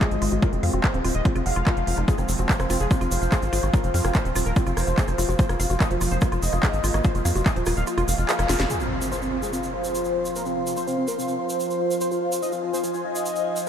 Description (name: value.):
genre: psychedelic trance.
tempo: 145 BPM.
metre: 4/4.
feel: straight.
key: F minor.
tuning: A4 = 441 Hz.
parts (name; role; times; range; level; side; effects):
wide unison lead; melody; 0.0-13.7 s; C4 to F5; -28 LUFS; equal; phaser, sidechain pumping, diffuse ambient delay.
evolving wavetable pad; sustained chords; 0.0-13.7 s; F3 to F4; -30 LUFS; equal; phaser, built-in reverb, vintage 12-bit sampler grit, sidechain pumping.
woody wave-folded pluck; riff; 0.0-8.7 s; Eb4 to Gb5; -32 LUFS; moving between left 4 dB and right 3 dB; chorus, auto-pan, vintage 12-bit sampler grit, sidechain pumping, tape echo.
electronic kick drum; drums; 0.0-7.5 s; none; -21 LUFS; equal; none.
techno drum kit; drums; 0.0-8.7 s; handclaps, hi-hat, rim click, snare drum; -30 LUFS; equal; none.
tight sequencer bass; bass; 0.1-8.7 s; Eb1 to F2; -24 LUFS; equal; none.
egg shaker; percussion; 2.1-13.7 s; none; -36 LUFS; right 2 dB; none.
impact; sound effects; 8.7-10.4 s; none; -34 LUFS; equal; none.
airy breathy pad; texture; 9.6-13.7 s; F4 to C6; -34 LUFS; left 1 dB; chorus, phaser, sidechain pumping.
room: moderate huge ambient reverb, RT60 9.2 s.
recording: dreamy mix soaked in reverb.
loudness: -21 LUFS.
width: side -9 dB against mid.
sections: 0.0-8.7 A section; 8.7-13.7 B section.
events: kick drops out 7.9-8.7; band accent 8.3; drum fill 8.5; impact 8.7-10.4.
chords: 0.0 F5.